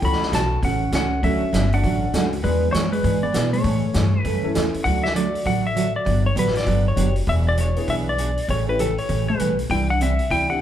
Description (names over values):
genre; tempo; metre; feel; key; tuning
country, western swing; 198 BPM; 4/4; swing 62% on 8ths; D major; A4 = 441 Hz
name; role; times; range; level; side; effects
clean lap steel guitar; melody; 0.0-10.6 s; A4 to B5; -24 LUFS; left 2 dB; none
hollow-body jazz guitar; second line; 0.0-4.5, 9.3-10.6 s; G3 to F#4; -27 LUFS; right 1 dB; none
picked steel-string acoustic guitar; accompaniment; 0.0-10.6 s; C3 to A4; -26 LUFS; right 4 dB; none
warm upright piano; accompaniment; 0.0-10.6 s; E3 to A4; -30 LUFS; left 1 dB; none
upright bass; bass; 0.0-10.6 s; E1 to B2; -22 LUFS; equal; none
vintage drum kit; drums; 0.0-10.4 s; hi-hat, kick drum, snare drum; -29 LUFS; equal; none
room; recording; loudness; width
wet large studio reverb, RT60 1.2 s; band playing live in one room; -18 LUFS; side -10 dB against mid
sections
0.0-4.9 A section; 4.9-10.6 B section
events
none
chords
0.0 A6; 1.2 Dmaj7; 2.4 E7; 3.6 A; 4.9 D; 6.1 Gmaj7; 7.3 E7; 8.5 A7; 9.7 Cadd9